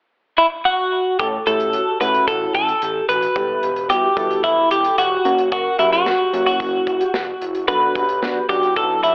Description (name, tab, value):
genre	synth-pop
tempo	111 BPM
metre	4/4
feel	straight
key	unclear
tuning	A4 = 440 Hz
part	twelve-string electric guitar	melody	0.4-9.1 s	E4 to B4	-20 LUFS	equal	spring reverb
part	warm analog keys	accompaniment	1.2-9.1 s	F#3 to A4	-27 LUFS	equal	chorus, phaser
part	vibraphone with medium mallets	arpeggios	1.2-9.1 s	E4 to A#4	-28 LUFS	equal	none
part	smooth synth bass	bass	1.2-9.1 s	E1 to B1	-37 LUFS	equal	tube saturation
part	modern studio drum kit	drums	1.2-9.1 s	hi-hat, kick drum, snare drum	-32 LUFS	equal	none
room	light reverb, studio reverb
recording	dry, gritty hardware recording, cassette tape, telephone sound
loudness	-19 LUFS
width	mono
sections	0.0-1.2 A section; 1.2-9.1 B section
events	none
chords	0.0 N.C.; 1.2 A; 3.4 Em; 5.2 F#; 7.7 Bm7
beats	0.12 0.66 | 1.20 1.74 2.28 2.82 | 3.36 3.90 4.44 4.98 | 5.52 6.06 6.60 7.14 | 7.68 8.22 8.76